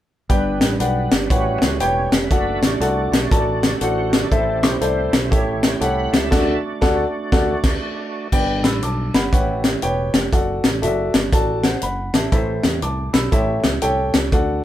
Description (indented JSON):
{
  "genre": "uptempo gospel",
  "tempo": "120 BPM",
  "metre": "4/4",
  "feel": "swing 63% on 8ths",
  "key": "unclear",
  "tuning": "A4 = 440 Hz",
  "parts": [
    { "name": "warm grand piano", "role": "accompaniment", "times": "0.3-14.6 s", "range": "G2 to E6", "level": "-21 LUFS", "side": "left 1 dB", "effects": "none" },
    { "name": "bright tonewheel organ", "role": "sustained chords", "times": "0.3-8.3 s", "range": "G3 to B5", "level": "-27 LUFS", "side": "right 4 dB", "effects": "slow rotary speaker, chorus vibrato" },
    { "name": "fingered electric bass", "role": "bass", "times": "0.3-14.6 s", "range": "E1 to E2", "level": "-25 LUFS", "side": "right 1 dB", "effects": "none" },
    { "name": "tight funk drum kit", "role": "drums", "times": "0.3-14.5 s", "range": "crash cymbal, hi-hat, kick drum, snare drum", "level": "-18 LUFS", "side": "equal", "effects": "none" }
  ],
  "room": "moderate studio reverb, RT60 0.5 s",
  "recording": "band playing live in one room",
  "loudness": "-16 LUFS",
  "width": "side -12 dB against mid",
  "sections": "0.3-8.3 A section; 8.3-14.6 B section",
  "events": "band accent 6.3-8.3",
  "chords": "0.3 G; 1.3 A13; 2.3 D/F#; 4.3 Am; 5.3 A7; 6.3 D; 8.3 G; 9.3 A13; 10.3 D/F#; 12.3 Am; 13.3 A7"
}